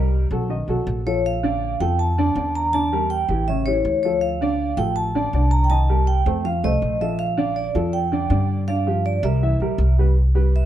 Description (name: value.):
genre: Afro-Cuban jazz.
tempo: 161 BPM.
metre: 4/4.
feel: straight.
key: unclear.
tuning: A4 = 435 Hz.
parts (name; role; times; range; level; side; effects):
dark upright piano; accompaniment; 0.0-10.7 s; C#3 to F5; -24 LUFS; equal; none.
upright bass; bass; 0.0-10.7 s; A1 to G2; -21 LUFS; equal; none.
vibraphone with medium mallets; melody; 1.1-10.7 s; Db5 to Bb5; -24 LUFS; right 1 dB; slapback echo.
room: light reverb.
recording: close, detailed microphones.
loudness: -18 LUFS.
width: side -11 dB against mid.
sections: 0.0-10.2 A section.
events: none.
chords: 0.0 C7(no3); 0.5 B7; 1.2 Bbmaj7; 2.7 Em7b5; 3.5 A7; 4.2 Dm7; 5.7 Cm7; 6.5 F7; 7.2 Bbmaj7; 8.7 Gm7; 9.4 C7.